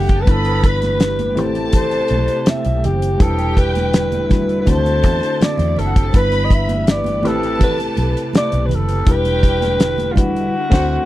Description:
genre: lush 1970s-style soul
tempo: 82 BPM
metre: 4/4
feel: straight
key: G major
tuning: A4 = 442 Hz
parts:
  - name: growling alto saxophone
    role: melody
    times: 0.0-11.1 s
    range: F4 to E5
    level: -20 LUFS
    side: equal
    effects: none
  - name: dark symphonic violin section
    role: second line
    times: 0.0-11.0 s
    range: C4 to B5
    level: -26 LUFS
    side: equal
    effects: none
  - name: tine electric piano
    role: accompaniment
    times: 0.0-11.1 s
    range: F#3 to C5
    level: -23 LUFS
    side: left 2 dB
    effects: none
  - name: soft string machine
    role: sustained chords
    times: 0.0-11.1 s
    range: C3 to F#5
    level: -28 LUFS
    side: equal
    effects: ensemble chorus
  - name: vintage muted fingered electric bass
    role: bass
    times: 0.0-11.0 s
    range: E1 to E2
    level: -20 LUFS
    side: equal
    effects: none
  - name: damped 70s drum kit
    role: drums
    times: 0.1-11.0 s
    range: crash cymbal, hi-hat, kick drum, snare drum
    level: -14 LUFS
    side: equal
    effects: none
  - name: congas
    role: percussion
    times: 0.3-10.3 s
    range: none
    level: -28 LUFS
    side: right 5 dB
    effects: none
room: small room reverb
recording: dry, close 1970s-style studio recording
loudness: -14 LUFS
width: side -15 dB against mid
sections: 0.0-11.1 A section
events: band accent 10.5-11.1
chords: 0.3 G6; 1.4 Am9; 3.2 Em9; 4.7 D7; 6.1 G6; 7.2 Am9; 9.1 Em9; 10.5 D7

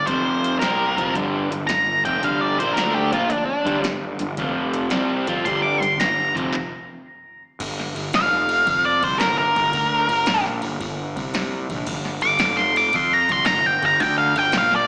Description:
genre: blues rock power trio and southern rock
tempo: 112 BPM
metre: 4/4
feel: swing 67% on 8ths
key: G minor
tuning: A4 = 440 Hz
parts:
  - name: octave-fuzz lead guitar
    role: melody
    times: 0.0-14.9 s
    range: D4 to D6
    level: -22 LUFS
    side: equal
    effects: distortion, slapback echo
  - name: crunchy overdriven guitar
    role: riff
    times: 0.0-6.5 s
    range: F2 to F4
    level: -26 LUFS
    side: equal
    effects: slapback echo
  - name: fuzz picked electric bass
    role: bass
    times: 0.0-14.9 s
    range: F1 to F2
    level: -29 LUFS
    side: equal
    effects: overdrive
  - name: electro analog drum machine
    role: drums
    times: 0.1-14.8 s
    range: crash cymbal, handclaps, hi-hat, kick drum, ride cymbal, snare drum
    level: -30 LUFS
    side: equal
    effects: slapback echo
room: light reverb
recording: live gig heard through the venue's PA, recital hall reverb, small speaker sound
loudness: -21 LUFS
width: mono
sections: 0.0-7.6 A section; 7.6-14.9 B section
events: stop 6.5-7.6; lead electric guitar solo 7.6-14.9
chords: 0.1 F5; 0.6 Gm; 4.4 F5; 4.9 G5; 6.5 N.C.; 8.7 Gm; 11.1 N.C.; 11.6 Gm; 12.4 Dm7/F; 12.9 Gm

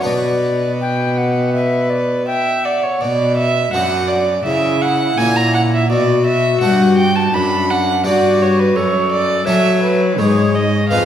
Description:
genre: classical, baroque-style sonata movement with continuo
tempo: 83 BPM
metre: 4/4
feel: straight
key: B minor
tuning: A4 = 439 Hz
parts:
  - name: tenor recorder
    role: melody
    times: 0.0-11.1 s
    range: D4 to G5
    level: -19 LUFS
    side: left 4 dB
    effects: none
  - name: warm violin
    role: second line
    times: 0.0-11.1 s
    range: B4 to B5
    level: -17 LUFS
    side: right 3 dB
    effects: none
  - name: harpsichord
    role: accompaniment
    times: 0.0-11.1 s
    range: F2 to A4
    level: -22 LUFS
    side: left 1 dB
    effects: none
  - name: rich cello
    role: bass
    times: 0.0-11.1 s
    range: F2 to F#3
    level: -19 LUFS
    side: equal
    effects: none
room: wet scoring stage reverb, RT60 1.4 s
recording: heard from further back in the room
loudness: -13 LUFS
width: side -10 dB against mid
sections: 0.0-3.0 A section; 3.0-11.1 B section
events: none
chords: 0.0 Bm; 4.4 A#dim/C#; 5.9 Bm; 8.8 F#m; 10.2 Fdim/Ab

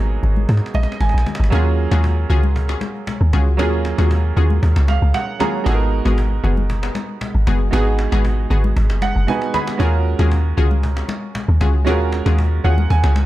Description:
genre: amapiano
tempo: 116 BPM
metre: 4/4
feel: straight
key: Eb minor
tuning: A4 = 441 Hz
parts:
  - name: clear grand piano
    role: accompaniment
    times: 0.0-13.3 s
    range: Gb3 to Cb6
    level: -24 LUFS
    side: right 7 dB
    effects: none
  - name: deep log drum bass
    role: bass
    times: 0.0-13.3 s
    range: Gb1 to Ab2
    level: -16 LUFS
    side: equal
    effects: none
  - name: cajon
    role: drums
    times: 0.1-13.3 s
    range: none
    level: -31 LUFS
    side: equal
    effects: none
  - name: congas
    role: percussion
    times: 0.2-13.3 s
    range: none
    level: -28 LUFS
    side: left 4 dB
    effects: none
  - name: analog pluck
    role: stabs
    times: 1.5-12.8 s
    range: Cb4 to Ab4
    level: -26 LUFS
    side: left 4 dB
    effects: chorus, ping-pong delay
room: studio ambience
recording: none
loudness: -15 LUFS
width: side -15 dB against mid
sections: 0.0-1.5 A section; 1.5-13.3 B section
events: drum fill 0.5-1.5, 9.3-9.8; grand piano fill 0.5-1.5, 4.6-5.7, 8.8-9.8, 12.4-13.3; drop 1.5-13.3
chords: 0.0 Abm7; 1.5 Ebm11; 5.7 Abm7; 9.8 Ebm11

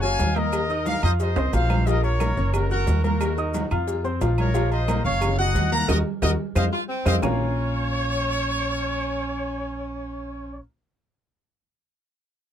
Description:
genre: latin, salsa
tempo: 179 BPM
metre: 4/4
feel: straight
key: Bb minor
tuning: A4 = 439 Hz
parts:
  - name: bright trumpet section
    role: melody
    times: 0.0-10.6 s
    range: Gb4 to Bb5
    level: -27 LUFS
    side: left 1 dB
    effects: none
  - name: clear baby grand piano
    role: accompaniment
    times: 0.0-10.6 s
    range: F3 to Gb6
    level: -29 LUFS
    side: left 2 dB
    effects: none
  - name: upright bass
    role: bass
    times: 0.0-10.6 s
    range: Gb1 to F2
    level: -24 LUFS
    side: equal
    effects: none
  - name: congas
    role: percussion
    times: 0.0-7.3 s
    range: none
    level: -31 LUFS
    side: right 1 dB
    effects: none
  - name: maracas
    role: percussion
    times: 0.0-7.3 s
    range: none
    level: -42 LUFS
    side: left 4 dB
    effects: none
  - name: cowbell and bongos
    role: percussion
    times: 0.2-7.3 s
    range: none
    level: -32 LUFS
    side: left 4 dB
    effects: none
  - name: timbales and agogo bells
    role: percussion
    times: 0.2-7.3 s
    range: none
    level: -34 LUFS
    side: right 6 dB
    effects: none
  - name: claves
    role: percussion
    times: 0.5-7.3 s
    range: none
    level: -37 LUFS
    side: right 2 dB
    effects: none
  - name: clear saxophone section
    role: second line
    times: 6.7-10.6 s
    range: C4 to F4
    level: -30 LUFS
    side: right 1 dB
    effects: none
room: little or no reverb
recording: close, detailed microphones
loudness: -21 LUFS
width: side -10 dB against mid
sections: 0.0-7.2 A section; 7.2-9.9 B section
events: drum fill 1.4-1.9, 6.2-7.2; band accent 5.9-7.2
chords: 0.0 Gbadd9; 0.5 Eb5; 1.2 F5; 1.9 Bbm; 2.5 Gb; 3.2 Ebm; 3.9 F5; 4.5 Bbm; 5.2 Gb; 5.9 Ebm; 6.6 F5; 7.2 Bbm

